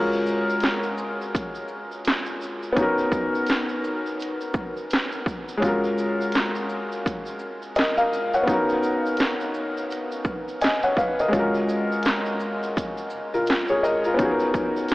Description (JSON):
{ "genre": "lo-fi hip hop", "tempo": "84 BPM", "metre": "4/4", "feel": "swing 61% on 16ths", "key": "F# major", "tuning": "A4 = 440 Hz", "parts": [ { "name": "felt-muted upright piano", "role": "accompaniment", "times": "0.0-14.9 s", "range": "G#3 to G#5", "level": "-23 LUFS", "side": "left 1 dB", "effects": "none" }, { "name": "tube shaker", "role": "percussion", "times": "0.1-14.9 s", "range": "none", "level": "-47 LUFS", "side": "right 4 dB", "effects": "none" }, { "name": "house drum kit", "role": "drums", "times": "0.3-14.9 s", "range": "handclaps, hi-hat, kick drum, shaker, snare drum", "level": "-27 LUFS", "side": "equal", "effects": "overdrive" } ], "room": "wet huge ambient reverb, RT60 8.4 s", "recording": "dreamy mix soaked in reverb, AM radio sound", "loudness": "-22 LUFS", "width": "side -19 dB against mid", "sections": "0.0-14.9 A section", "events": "none", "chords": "0.0 F#maj9; 2.8 Bmaj9; 5.6 F#maj9; 8.5 Bmaj9; 11.3 F#maj9; 14.2 Bmaj9", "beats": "0.62 1.33 2.05 | 2.76 3.48 4.19 4.90 | 5.62 6.33 7.05 7.76 | 8.47 9.19 9.90 10.62 | 11.33 12.05 12.76 13.47 | 14.19 14.90" }